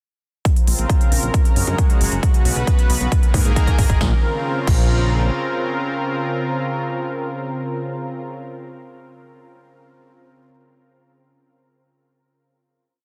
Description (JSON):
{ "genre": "uplifting trance", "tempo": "135 BPM", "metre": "4/4", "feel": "straight", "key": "Bb minor", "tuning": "A4 = 439 Hz", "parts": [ { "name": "lush unison pad", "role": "sustained chords", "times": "0.4-8.3 s", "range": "Db3 to B4", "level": "-26 LUFS", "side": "equal", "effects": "chorus, sidechain pumping" }, { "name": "big-room dance drum kit", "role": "drums", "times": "0.5-4.8 s", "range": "congas, crash cymbal, hi-hat, snare drum", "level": "-30 LUFS", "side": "equal", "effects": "overdrive, high-pass filter on hats, small room reverb, high-pass filter on perc, high-pass filter on snare, high-pass filter on cymbals" }, { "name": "electronic kick drum", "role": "drums", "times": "0.5-4.8 s", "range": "none", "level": "-18 LUFS", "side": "equal", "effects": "overdrive, small room reverb" }, { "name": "fat analog bass", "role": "bass", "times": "0.7-5.3 s", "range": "Gb1 to Ab2", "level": "-22 LUFS", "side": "equal", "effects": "tube saturation, sidechain pumping" } ], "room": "digital ambience", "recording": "dense, heavily limited modern master", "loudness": "-19 LUFS", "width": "mono", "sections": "0.5-4.0 build; 4.0-7.6 final chord", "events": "build-up 0.5-4.0; drum fill 2.2-4.0", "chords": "0.5 Bbmadd9; 1.3 Gbadd9; 2.2 Bsus2; 3.1 Absus2; 4.0 Bbmadd9" }